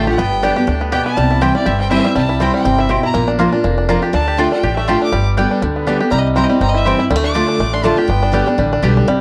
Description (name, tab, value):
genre	bluegrass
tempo	243 BPM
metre	4/4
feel	swing 55% on 8ths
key	C major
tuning	A4 = 440 Hz
part	clear fiddle	second line	0.0-8.5 s	D5 to D6	-24 LUFS	equal	none
part	picked steel-string acoustic guitar	accompaniment	0.0-9.2 s	F2 to G4	-20 LUFS	equal	none
part	bluegrass banjo	arpeggios	0.0-9.2 s	G3 to G4	-22 LUFS	equal	none
part	mandolin	stabs	0.0-8.9 s	A3 to Bb5	-25 LUFS	equal	tape echo
part	upright bass	bass	0.0-9.2 s	F1 to D2	-21 LUFS	equal	none
room	moderate spring reverb, RT60 1.4 s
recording	cassette tape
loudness	-15 LUFS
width	mono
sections	0.0-2.2 A section; 2.2-9.2 A section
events	fiddle solo 0.0-9.2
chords	0.2 G; 1.2 C; 3.1 Bb; 4.1 Dm; 5.1 G; 6.1 C; 7.1 Dm; 8.1 G